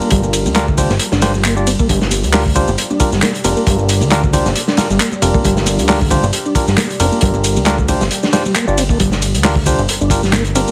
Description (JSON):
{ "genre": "breakbeat, breaks", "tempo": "135 BPM", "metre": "4/4", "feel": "swing 55% on 16ths", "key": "G minor pentatonic", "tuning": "A4 = 437 Hz", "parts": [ { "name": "deep dark ambient pad", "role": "sustained chords", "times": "0.0-10.7 s", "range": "G3 to D5", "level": "-28 LUFS", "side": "equal", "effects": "none" }, { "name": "mellow tonewheel organ", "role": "riff", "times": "0.0-10.7 s", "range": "G3 to D4", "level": "-22 LUFS", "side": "equal", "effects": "chorus vibrato, fast rotary speaker, dub echo" }, { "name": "barky tine electric piano", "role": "stabs", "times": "0.0-10.7 s", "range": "D4 to D5", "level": "-21 LUFS", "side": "equal", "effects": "vintage 12-bit sampler grit, dub echo" }, { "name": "garage drum kit", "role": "drums", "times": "0.0-10.7 s", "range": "handclaps, ride cymbal, shaker", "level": "-24 LUFS", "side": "equal", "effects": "none" }, { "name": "congas", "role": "percussion", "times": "0.0-8.9 s", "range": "none", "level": "-30 LUFS", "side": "equal", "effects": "none" }, { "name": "fat analog bass", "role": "bass", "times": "0.1-10.6 s", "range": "F1 to D2", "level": "-20 LUFS", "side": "equal", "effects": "none" }, { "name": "crunchy breakbeat drum kit", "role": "drums", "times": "0.1-10.7 s", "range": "hi-hat, kick drum, snare drum", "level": "-19 LUFS", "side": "equal", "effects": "none" } ], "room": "light reverb", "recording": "heavily compressed radio sound, multiband compression, vinyl crackle", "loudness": "-14 LUFS", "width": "mono", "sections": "0.0-9.0 A section; 9.0-10.7 A section", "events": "drop 0.0-9.0, 9.0-10.7", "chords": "0.0 Gm7", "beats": "| 0.11 0.55 1.00 1.44 | 1.89 2.33 2.78 3.22 | 3.67 4.11 4.55 5.00 | 5.44 5.89 6.33 6.78 | 7.22 7.67 8.11 8.55 | 9.00 9.44 9.89 10.33" }